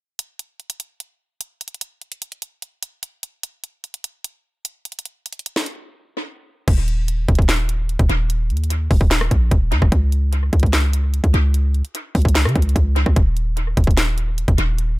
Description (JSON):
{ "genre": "hip hop, trap", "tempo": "148 BPM", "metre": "4/4", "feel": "half-time", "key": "unclear", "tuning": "A4 = 440 Hz", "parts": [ { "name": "trap drum kit", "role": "drums", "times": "0.2-14.9 s", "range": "crash cymbal, handclaps, hi-hat, kick drum, rim click, snare drum", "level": "-18 LUFS", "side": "equal", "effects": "tape echo" }, { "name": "warm 808-style bass", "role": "bass", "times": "6.7-15.0 s", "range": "Eb1 to Db3", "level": "-18 LUFS", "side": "equal", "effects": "none" } ], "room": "digital ambience", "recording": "echo-heavy mix", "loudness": "-16 LUFS", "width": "side -19 dB against mid", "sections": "0.2-6.7 A section; 6.7-15.0 B section", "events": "break 5.9-6.7", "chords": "none", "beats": "| 0.19 0.60 1.00 1.41 | 1.81 2.22 2.62 3.03 | 3.43 3.84 4.24 4.65 | 5.05 5.46 5.87 6.27 | 6.68 7.08 7.49 7.89 | 8.30 8.70 9.11 9.52 | 9.92 10.33 10.73 11.14 | 11.54 11.95 12.35 12.76 | 13.16 13.57 13.97 14.38 | 14.79" }